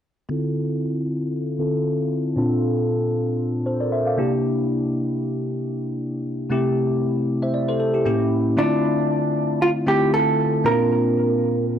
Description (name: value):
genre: amapiano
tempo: 116 BPM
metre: 4/4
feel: swing 55% on 16ths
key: D minor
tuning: A4 = 440 Hz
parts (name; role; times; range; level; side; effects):
- bell-like tine electric piano; accompaniment; 0.3-11.8 s; A2 to F5; -20 LUFS; left 1 dB; analog chorus, low-pass filter
- vintage hollow-body jazz guitar; melody; 8.6-11.6 s; D4 to Bb4; -20 LUFS; right 2 dB; analog delay
room: digital ambience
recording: dry, gritty hardware recording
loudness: -19 LUFS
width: side -9 dB against mid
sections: 0.3-8.6 A section; 8.6-11.8 B section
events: filter sweep on tine electric piano 0.3-8.6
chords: 0.3 Dm9; 2.4 Bbmaj7; 4.2 C9; 6.5 Am7/C; 8.1 A7b9; 8.6 Dm9; 10.6 Bb